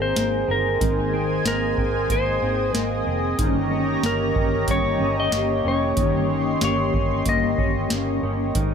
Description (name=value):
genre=dream pop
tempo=93 BPM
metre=4/4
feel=straight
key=unclear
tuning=A4 = 440 Hz
part: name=clean lap steel guitar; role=melody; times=0.0-8.2 s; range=Bb4 to Eb5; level=-26 LUFS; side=left 1 dB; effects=tape echo, plate reverb
part: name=mellow electric guitar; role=accompaniment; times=0.0-8.7 s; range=G2 to Bb4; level=-28 LUFS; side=right 2 dB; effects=harmonic tremolo, lush chorus
part: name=lush unison pad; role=sustained chords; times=0.0-8.7 s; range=G4 to C6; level=-27 LUFS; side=right 1 dB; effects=chorus, plate reverb
part: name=semi-hollow electric guitar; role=arpeggios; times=0.0-8.7 s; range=Eb3 to Db4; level=-27 LUFS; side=left 3 dB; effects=analog chorus, tape echo
part: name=vintage muted fingered electric bass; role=bass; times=0.0-8.7 s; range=F1 to Ab1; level=-28 LUFS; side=right 1 dB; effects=none
part: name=booming analog drum machine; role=drums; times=0.2-8.7 s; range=hi-hat, kick drum, snare drum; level=-25 LUFS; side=right 1 dB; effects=none
room=moderate studio reverb, RT60 0.6 s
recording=none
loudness=-19 LUFS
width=side -7 dB against mid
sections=0.0-8.7 A section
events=none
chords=0.0 Abadd9; 3.4 Eb7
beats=0.17 | 0.81 1.46 2.10 2.75 | 3.39 4.04 4.68 5.33 | 5.97 6.62 7.26 7.91 | 8.55